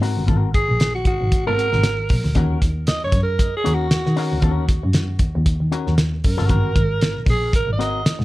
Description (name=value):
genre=funk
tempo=116 BPM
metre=4/4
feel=swing 56% on 16ths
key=Eb dorian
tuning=A4 = 440 Hz
part: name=electric guitar with an envelope filter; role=accompaniment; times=0.0-8.0 s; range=C4 to Bb4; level=-26 LUFS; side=left 8 dB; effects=none
part: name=cloth-damped thuddy drum kit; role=drums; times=0.0-8.2 s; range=hi-hat, kick drum, snare drum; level=-20 LUFS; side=equal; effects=none
part: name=warm double bass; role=bass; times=0.2-8.2 s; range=G1 to Eb3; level=-20 LUFS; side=equal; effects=none
part: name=raspy alto saxophone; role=melody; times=0.5-8.2 s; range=Gb4 to Eb5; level=-24 LUFS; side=right 2 dB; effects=analog delay
room=light reverb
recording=cassette tape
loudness=-17 LUFS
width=side -17 dB against mid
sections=0.0-8.2 A section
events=alto saxophone solo 0.0-8.2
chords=0.0 Ab9; 2.4 Ebm7; 6.5 Ab9